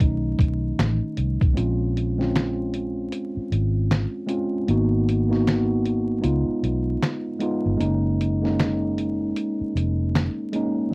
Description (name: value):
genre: lo-fi hip hop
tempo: 77 BPM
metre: 4/4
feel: swing 62% on 16ths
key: Bb minor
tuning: A4 = 441 Hz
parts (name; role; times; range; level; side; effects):
- mellow tine electric piano; accompaniment; 0.0-10.9 s; Eb3 to Gb4; -24 LUFS; equal; slow stereo tremolo, cassette tape, low-pass filter
- vintage muted fingered electric bass; bass; 0.0-10.3 s; F1 to Db2; -24 LUFS; equal; none
- dusty soul sampler-style drum kit; drums; 0.0-10.8 s; finger snaps, hi-hat, kick drum, snare drum; -24 LUFS; equal; cassette tape
room: moderate booth ambience, RT60 0.2 s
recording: home recording on cassette, vinyl crackle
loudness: -20 LUFS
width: side -28 dB against mid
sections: 0.0-1.6 A section; 1.6-10.9 B section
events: tine electric piano solo 0.0-1.6; kick muted 1.6-10.9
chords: 0.0 B9; 1.6 Bbm9; 4.7 Abm7; 6.2 Db9; 7.8 Gb6